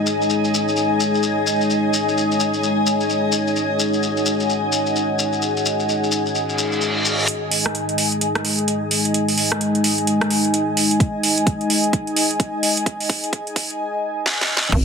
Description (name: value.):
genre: bass house.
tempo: 129 BPM.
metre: 4/4.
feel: swing 61% on 16ths.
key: unclear.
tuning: A4 = 442 Hz.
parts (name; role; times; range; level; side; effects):
dark analog pad; sustained chords; 0.0-14.8 s; G#3 to G#5; -22 LUFS; left 1 dB; chorus, sidechain pumping.
ethereal airy pad; texture; 0.0-14.8 s; D#4 to G#5; -23 LUFS; equal; ensemble chorus, built-in reverb, phaser, sidechain pumping.
shekere; percussion; 0.1-7.3 s; none; -25 LUFS; left 4 dB; none.
reverse cymbal; sound effects; 6.6-7.3 s; none; -22 LUFS; equal; none.
house drum kit; drums; 7.3-14.8 s; crash cymbal, hi-hat, rim click, snare drum; -20 LUFS; right 2 dB; low-pass filter on hats, low-pass filter on snare, low-pass filter on cymbals, low-pass filter on room.
electronic kick drum; drums; 11.0-14.8 s; none; -20 LUFS; right 1 dB; none.
hollow knocking FM bass; bass; 14.7-14.8 s; G#1; -18 LUFS; right 1 dB; tube saturation, sidechain pumping.
room: moderate plate reverb, RT60 2.0 s.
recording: dense, heavily limited modern master, high-pass filter.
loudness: -17 LUFS.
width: side -5 dB against mid.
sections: 0.0-7.3 A section; 7.3-14.7 B section.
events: reverse cymbal 6.6-7.3; build-up 7.3-14.7; drum fill 11.0-13.8, 14.3-14.7.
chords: 0.0 G#5.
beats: 0.31 0.77 1.24 | 1.70 2.17 2.63 3.10 | 3.56 4.03 4.49 4.96 | 5.42 5.89 6.35 6.82 | 7.28 7.75 8.21 8.68 | 9.14 9.61 10.07 10.54 | 11.00 11.47 11.93 12.40 | 12.86 13.33 13.79 14.26 | 14.72.